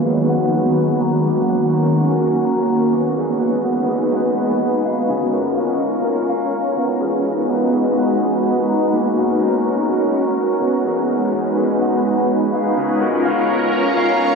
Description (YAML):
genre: hip hop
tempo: 125 BPM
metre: 4/4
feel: half-time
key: G# dorian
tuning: A4 = 440 Hz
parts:
  - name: shimmering ambient pad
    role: sustained chords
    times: 0.0-14.4 s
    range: D#3 to B4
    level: -17 LUFS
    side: equal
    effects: chorus, built-in reverb
  - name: electric guitar at the edge of break-up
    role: arpeggios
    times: 0.0-14.4 s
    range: A#3 to A#5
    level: -22 LUFS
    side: equal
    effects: ping-pong delay
  - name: wind-like tuned noise texture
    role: texture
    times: 0.0-14.4 s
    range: G#4 to C#6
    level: -29 LUFS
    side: equal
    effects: built-in reverb
room: wet cathedral reverb, RT60 6.5 s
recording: dreamy mix soaked in reverb, low-pass filter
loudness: -15 LUFS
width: side -4 dB against mid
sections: 0.0-14.4 A section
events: filter sweep 0.0-14.4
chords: 0.0 G#m7; 1.0 F#; 2.9 G#m7; 4.8 A#m; 6.8 G#m7; 8.7 F#; 10.6 G#m7; 12.5 A#m